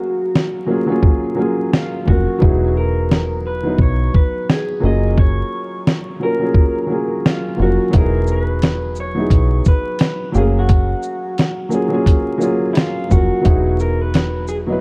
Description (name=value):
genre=lo-fi hip hop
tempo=87 BPM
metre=4/4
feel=swing 61% on 16ths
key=F# major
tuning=A4 = 439 Hz
part: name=electric guitar through a small old amp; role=melody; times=0.0-14.6 s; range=E4 to D#5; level=-26 LUFS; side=equal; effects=low-pass filter
part: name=felt-muted upright piano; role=accompaniment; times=0.0-14.8 s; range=F#3 to E#5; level=-22 LUFS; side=equal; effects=low-pass filter
part: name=dusty soul sampler-style drum kit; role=drums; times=0.4-14.7 s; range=hi-hat, kick drum, shaker, snare drum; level=-17 LUFS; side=equal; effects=none
part: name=deep dub fingered electric bass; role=bass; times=2.1-14.8 s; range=E1 to B1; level=-20 LUFS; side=equal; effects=none
room=digital ambience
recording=dark, warm production, vinyl crackle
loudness=-17 LUFS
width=mono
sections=0.0-14.8 A section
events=break 0.0-7.9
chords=0.0 F#maj7; 2.4 Emaj9; 4.8 F#maj7; 7.9 Emaj9; 10.3 F#maj7; 13.4 Emaj9